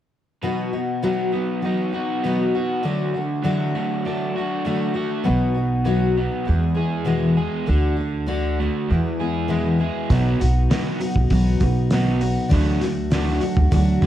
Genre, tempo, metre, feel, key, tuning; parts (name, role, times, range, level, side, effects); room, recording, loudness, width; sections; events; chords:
folk rock and heartland rock; 99 BPM; 4/4; straight; A4 = 440 Hz
picked twelve-string acoustic guitar; accompaniment; 0.4-14.1 s; E2 to G#4; -22 LUFS; left 3 dB
crunchy overdriven guitar; riff; 0.4-14.1 s; E2 to G#4; -25 LUFS; right 4 dB
upright bass; bass; 5.3-14.1 s; B1 to E2; -22 LUFS; right 1 dB
cloth-damped thuddy drum kit; drums; 10.1-14.1 s; hi-hat, kick drum, snare drum; -23 LUFS; equal
light reverb, studio ambience; dark, warm production; -19 LUFS; side -12 dB against mid
0.4-10.1 A section; 10.1-14.1 B section
0.4 B; 2.8 D; 5.3 B; 6.5 E; 7.7 D; 8.9 E; 10.1 B; 12.5 D